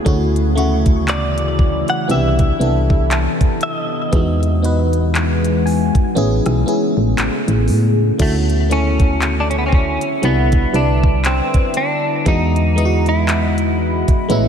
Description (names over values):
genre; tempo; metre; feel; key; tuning
contemporary R&B; 59 BPM; 4/4; swing 58% on 16ths; D lydian; A4 = 440 Hz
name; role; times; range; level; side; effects
FM electric piano; accompaniment; 0.0-14.5 s; C#3 to D#5; -21 LUFS; equal; chorus, phaser
deep dark ambient pad; sustained chords; 0.0-14.5 s; C3 to F#5; -22 LUFS; left 2 dB; chorus, built-in reverb
soft round pluck; texture; 0.0-6.6 s; F#5 to C#6; -33 LUFS; right 2 dB; chorus, ping-pong delay
solid FM bass; bass; 0.1-14.5 s; A1 to A2; -17 LUFS; equal; none
trap drum kit; drums; 0.1-14.5 s; crash cymbal, handclaps, hi-hat, kick drum, rim click; -18 LUFS; equal; none
direct-recorded clean electric guitar; melody; 1.1-14.5 s; A3 to F#5; -21 LUFS; equal; analog chorus, ping-pong delay
room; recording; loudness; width
light reverb; none; -14 LUFS; side -8 dB against mid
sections
0.0-8.2 A section; 8.2-14.5 A section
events
kick muted 6.2-8.2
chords
0.1 Dmaj9; 2.1 Cmaj9; 4.1 Emaj9; 6.2 Amaj9; 8.2 Dmaj9; 10.2 Cmaj9; 12.3 Emaj9